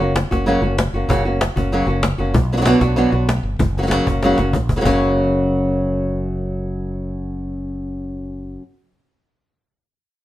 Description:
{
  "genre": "flamenco",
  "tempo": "192 BPM",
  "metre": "4/4",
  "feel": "straight",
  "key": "F# major",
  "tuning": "A4 = 439 Hz",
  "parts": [
    { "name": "flamenco guitar", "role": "melody", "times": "0.0-8.6 s", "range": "F#2 to F#4", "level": "-19 LUFS", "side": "equal", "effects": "none" },
    { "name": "mellow fretless electric bass", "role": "bass", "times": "0.0-8.6 s", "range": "F#1 to B1", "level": "-22 LUFS", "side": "equal", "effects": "none" },
    { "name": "cajon", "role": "percussion", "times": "0.2-4.9 s", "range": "none", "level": "-22 LUFS", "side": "left 1 dB", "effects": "none" }
  ],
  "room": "moderate stone room reverb, RT60 0.9 s",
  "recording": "minimal, uncompressed stereo recording",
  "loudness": "-16 LUFS",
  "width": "side -14 dB against mid",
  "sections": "0.0-4.8 A section; 4.8-7.3 B section",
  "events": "drum fill 4.2-4.8",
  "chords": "0.0 F#; 2.3 Bm; 3.6 F#"
}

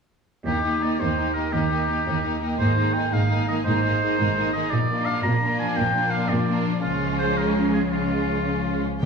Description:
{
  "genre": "cinematic, heroic adventure film score",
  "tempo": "112 BPM (dotted quarters)",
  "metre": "6/8",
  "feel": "straight",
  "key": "Eb major",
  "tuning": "A4 = 443 Hz",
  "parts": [
    { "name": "warm symphonic violin section", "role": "melody", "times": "0.5-9.1 s", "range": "F4 to G5", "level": "-33 LUFS", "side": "left 3 dB", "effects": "none" },
    { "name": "clear oboe", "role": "second line", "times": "0.5-8.8 s", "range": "F4 to Bb5", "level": "-26 LUFS", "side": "equal", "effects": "none" },
    { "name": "warm symphonic violin section", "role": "second line", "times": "0.5-9.1 s", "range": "Db4 to Eb4", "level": "-30 LUFS", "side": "right 1 dB", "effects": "none" },
    { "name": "clear symphonic viola section", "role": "accompaniment", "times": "0.5-9.1 s", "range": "G3 to G4", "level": "-29 LUFS", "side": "equal", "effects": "none" },
    { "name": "concert harp", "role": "arpeggios", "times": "0.5-9.1 s", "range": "Ab2 to Bb4", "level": "-29 LUFS", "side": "left 5 dB", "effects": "none" },
    { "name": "rich chamber double bass section", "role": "bass", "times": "0.5-8.8 s", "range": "Ab1 to Eb2", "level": "-28 LUFS", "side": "right 3 dB", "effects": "none" },
    { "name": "rich symphonic cello section", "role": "bass", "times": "0.5-9.1 s", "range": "Eb2 to Db3", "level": "-29 LUFS", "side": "right 3 dB", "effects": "none" }
  ],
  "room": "wet recital hall reverb, RT60 1.4 s",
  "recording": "recorded in a church or concert hall",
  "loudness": "-20 LUFS",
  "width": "side -5 dB against mid",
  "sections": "0.5-9.0 A section",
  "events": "none",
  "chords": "0.5 Eb; 2.6 Abadd9; 4.7 Bb; 6.8 Db"
}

